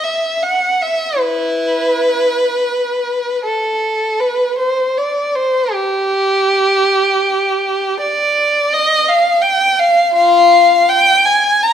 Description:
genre	classical, free, expressive piece for unaccompanied violin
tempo	68-86 BPM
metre	3/4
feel	rubato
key	F dorian from 8.0 s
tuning	A4 = 438 Hz
part	warm violin	solo	0.0-11.7 s	E4 to Bb5	-12 LUFS	equal	none
room	moderate recital hall reverb, RT60 1.5 s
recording	minimal, uncompressed stereo recording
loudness	-12 LUFS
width	side -8 dB against mid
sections	0.0-11.7 A section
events	none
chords	none

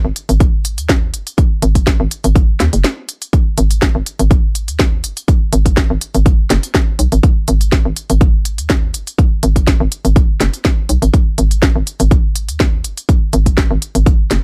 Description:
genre	minimal techno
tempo	123 BPM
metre	4/4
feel	swing 53% on 16ths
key	G# minor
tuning	A4 = 438 Hz
part	hollow knocking FM bass	bass	0.0-14.4 s	F#1 to D#2	-17 LUFS	equal	sidechain pumping
part	house drum kit	drums	0.2-14.4 s	hi-hat, snare drum	-21 LUFS	equal	none
part	electronic kick drum	drums	0.4-14.2 s	none	-15 LUFS	equal	none
room	little or no reverb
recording	none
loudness	-14 LUFS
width	mono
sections	0.0-14.4 A section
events	break 2.8-3.3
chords	none

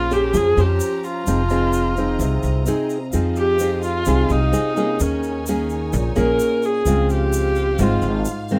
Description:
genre	bossa nova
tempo	129 BPM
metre	4/4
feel	straight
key	F minor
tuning	A4 = 440 Hz
part	warm viola	melody	0.0-8.3 s	Db4 to Bb4	-24 LUFS	equal	none
part	nylon-string guitar	accompaniment	0.0-8.6 s	Ab2 to C5	-24 LUFS	equal	none
part	rich studio string section	sustained chords	0.0-8.6 s	Db4 to Bb5	-37 LUFS	equal	none
part	upright bass	bass	0.0-8.2 s	F1 to F2	-24 LUFS	equal	none
part	egg shaker	percussion	0.1-8.6 s	none	-38 LUFS	equal	none
room	light reverb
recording	none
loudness	-20 LUFS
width	mono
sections	0.0-3.1 A section; 3.1-8.6 B section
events	viola solo 3.1-8.6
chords	0.0 Bbm9; 1.3 Fm7; 5.0 Eb7sus4; 6.9 Dbmaj7

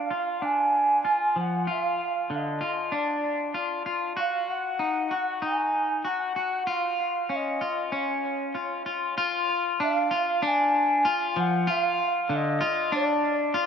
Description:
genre	dream pop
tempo	96 BPM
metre	4/4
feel	straight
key	unclear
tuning	A4 = 439 Hz
part	mellow bansuri	melody	0.0-13.7 s	Db5 to Ab5	-26 LUFS	right 1 dB	dub echo
part	electric guitar at the edge of break-up	arpeggios	0.0-13.7 s	D3 to Gb4	-27 LUFS	left 2 dB	wide subtle chorus, low-pass filter, dub echo
room	wet spring reverb, RT60 1.8 s, small room ambience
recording	echo-heavy mix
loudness	-24 LUFS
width	side -7 dB against mid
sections	0.0-9.2 A section; 9.2-13.7 B section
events	none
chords	0.0 Ddim; 4.2 Ebm; 6.7 Dbadd9; 9.2 Dm

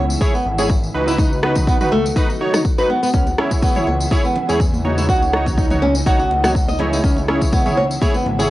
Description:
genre	afro house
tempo	123 BPM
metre	4/4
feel	swing 54% on 16ths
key	C# minor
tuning	A4 = 443 Hz
part	ethereal airy pad	sustained chords	0.0-8.5 s	C#3 to F#4	-28 LUFS	equal	ensemble chorus, built-in reverb, sidechain pumping, cassette tape
part	flamenco guitar	arpeggios	0.0-8.5 s	A3 to D#5	-20 LUFS	equal	sidechain pumping, cassette tape, analog delay
part	smooth synth bass	bass	0.0-8.5 s	G#1 to E2	-23 LUFS	equal	sidechain pumping
part	tambourine	percussion	0.1-8.5 s	none	-31 LUFS	left 2 dB	none
part	warm analog keys	stabs	0.2-8.5 s	D#4 to C#5	-22 LUFS	right 2 dB	chorus, sidechain pumping, cassette tape, analog delay
part	electronic kick drum	drums	0.2-8.1 s	none	-18 LUFS	equal	overdrive, cassette tape
part	house drum kit	drums	1.4-7.7 s	rim click, toms	-23 LUFS	equal	overdrive, cassette tape
part	congas	percussion	3.3-8.4 s	none	-29 LUFS	right 1 dB	none
room	light reverb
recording	home recording on cassette, nothing above 10.8 kHz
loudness	-15 LUFS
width	side -16 dB against mid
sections	0.0-8.5 A section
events	none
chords	0.0 C#m; 1.2 B/C#; 3.1 C#m; 5.1 D#m7b5/C#; 7.0 C#m

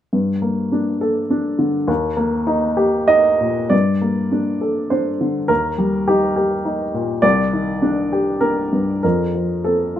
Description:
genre	neoclassical minimalist piano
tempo	102 BPM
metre	3/4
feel	rubato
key	G minor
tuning	A4 = 440 Hz
part	warm upright piano	solo	0.1-10.0 s	C2 to Eb5	-16 LUFS	equal	none
room	light reverb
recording	minimal, uncompressed stereo recording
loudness	-16 LUFS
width	side -11 dB against mid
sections	0.1-3.7 A section; 3.7-10.0 B section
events	none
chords	0.1 Gmadd9; 1.9 Eb; 3.7 Gmadd9; 5.5 Eb; 7.2 Cmadd9; 9.0 F

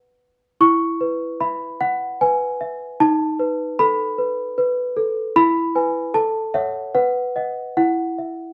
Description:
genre	classical, lullaby for celesta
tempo	75 BPM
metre	3/4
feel	straight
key	E major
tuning	A4 = 441 Hz
part	small celesta	solo	0.0-8.5 s	D#4 to C#6	-20 LUFS	equal	none
room	moderate studio reverb, RT60 0.7 s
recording	band playing live in one room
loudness	-21 LUFS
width	mono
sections	0.0-8.5 A section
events	none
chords	0.0 B; 0.6 E; 3.0 B7/D#; 5.4 E; 6.1 F#m/A; 6.9 B; 7.8 E5

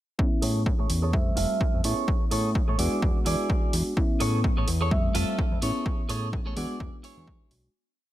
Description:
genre	filtered disco house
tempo	127 BPM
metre	4/4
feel	swing 56% on 16ths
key	A major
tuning	A4 = 439 Hz
part	reed electric piano	accompaniment	0.2-7.7 s	G3 to E5	-31 LUFS	equal	phaser, sidechain pumping, low-pass filter
part	electronic kick drum	drums	0.2-7.4 s	none	-26 LUFS	equal	overdrive
part	clean electric guitar	riff	0.4-7.5 s	E4 to E5	-32 LUFS	right 3 dB	wide subtle chorus, sidechain pumping, low-pass filter
part	fat analog bass	bass	0.4-7.7 s	F1 to A2	-28 LUFS	equal	sidechain pumping, low-pass filter
part	electronic hi-hat	drums	0.4-7.6 s	none	-34 LUFS	right 2 dB	overdrive, sidechain pumping on hats
room	little or no reverb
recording	none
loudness	-23 LUFS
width	side -14 dB against mid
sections	0.2-7.8 groove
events	filter sweep 0.2-7.8; fade-out 5.2-7.8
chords	0.2 Amaj7; 1.1 Fmaj7; 1.8 Amaj7; 2.8 E7; 4.0 Amaj7; 4.9 Fmaj7; 5.6 Amaj7; 6.6 E7

